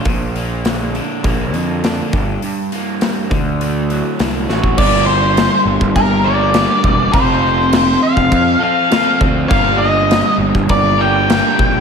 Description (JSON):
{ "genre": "classic rock", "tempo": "102 BPM", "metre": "4/4", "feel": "straight", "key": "G minor", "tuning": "A4 = 440 Hz", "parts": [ { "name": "crunchy overdriven guitar", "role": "riff", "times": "0.0-11.8 s", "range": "G2 to Bb4", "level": "-18 LUFS", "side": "right 1 dB", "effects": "none" }, { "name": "fuzz picked electric bass", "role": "bass", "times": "0.1-11.8 s", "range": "E1 to F2", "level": "-19 LUFS", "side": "equal", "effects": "overdrive" }, { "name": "big rock drum kit", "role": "drums", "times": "0.1-11.7 s", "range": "crash cymbal, hi-hat, kick drum, snare drum", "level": "-18 LUFS", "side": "equal", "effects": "none" }, { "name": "octave-fuzz lead guitar", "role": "melody", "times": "4.8-11.8 s", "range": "Bb4 to G5", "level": "-15 LUFS", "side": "left 1 dB", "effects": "distortion" } ], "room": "moderate lush hall reverb, RT60 1.6 s, small room ambience", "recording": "big arena sound", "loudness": "-12 LUFS", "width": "side -6 dB against mid", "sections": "0.0-4.8 A section; 4.8-11.8 B section", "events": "drum fill 4.5", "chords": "0.1 Bb; 2.1 Gm; 3.3 D; 4.8 Gm; 7.1 F; 9.5 Gm", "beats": "| 0.06 0.65 1.24 1.83 | 2.42 3.01 3.60 4.19 | 4.78 5.37 5.96 6.55 | 7.14 7.73 8.32 8.92 | 9.51 10.11 10.70 11.30" }